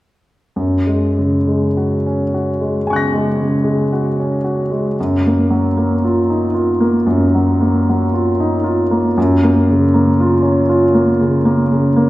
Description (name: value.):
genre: classical, impressionist solo piano.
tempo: 57 BPM.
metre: 4/4.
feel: rubato.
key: F# major.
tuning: A4 = 444 Hz.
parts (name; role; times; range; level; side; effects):
clear grand piano; solo; 0.6-12.1 s; F#2 to A#6; -13 LUFS; equal; none.
room: wet recital hall reverb, RT60 1.6 s.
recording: heard from further back in the room.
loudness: -13 LUFS.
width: side -17 dB against mid.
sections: 0.6-12.1 A section.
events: none.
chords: 0.6 F#add9; 5.0 D#madd9/F#; 9.2 F#maj7.